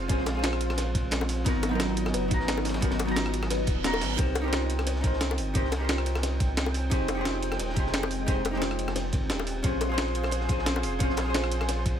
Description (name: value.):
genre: liquid drum and bass.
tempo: 176 BPM.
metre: 4/4.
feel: swing 54% on 16ths.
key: unclear.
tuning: A4 = 444 Hz.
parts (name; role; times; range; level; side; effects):
hollow-body jazz guitar; accompaniment; 0.0-12.0 s; Gb3 to Bb5; -32 LUFS; equal; tape echo.
lush unison pad; sustained chords; 0.0-12.0 s; Gb3 to G5; -36 LUFS; right 1 dB; chorus.
saturated sub bass; bass; 0.0-12.0 s; Eb1 to C2; -31 LUFS; equal; none.
kalimba; arpeggios; 0.1-11.8 s; Cb4 to C5; -35 LUFS; left 2 dB; dub echo.
breakbeat sampler-style drum kit; drums; 0.1-11.9 s; hi-hat, rim click, snare drum; -32 LUFS; right 1 dB; none.
crunchy breakbeat drum kit; drums; 0.1-11.9 s; ride cymbal, snare drum; -38 LUFS; equal; high-pass filter on cymbals, high-pass filter on snare, high-pass filter on room.
electronic kick drum; drums; 0.1-11.9 s; none; -27 LUFS; equal; none.
bongos; percussion; 0.3-11.7 s; none; -35 LUFS; left 5 dB; none.
reverse cymbal; sound effects; 3.6-4.2 s; none; -36 LUFS; right 7 dB; none.
room: light reverb, small room ambience.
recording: none.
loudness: -25 LUFS.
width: side -9 dB against mid.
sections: 0.0-12.0 A section.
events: reverse cymbal 3.6-4.2.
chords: 0.0 Bb7(no3); 1.5 Abm7; 4.2 Cm7; 6.9 Fm7; 9.6 Bbm7.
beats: | 0.10 0.44 0.78 1.12 | 1.46 1.80 2.14 2.48 | 2.82 3.17 3.50 3.85 | 4.19 4.53 4.87 5.21 | 5.55 5.89 6.23 6.57 | 6.92 7.25 7.60 7.94 | 8.28 8.62 8.96 9.30 | 9.64 9.98 10.32 10.66 | 11.01 11.35 11.69.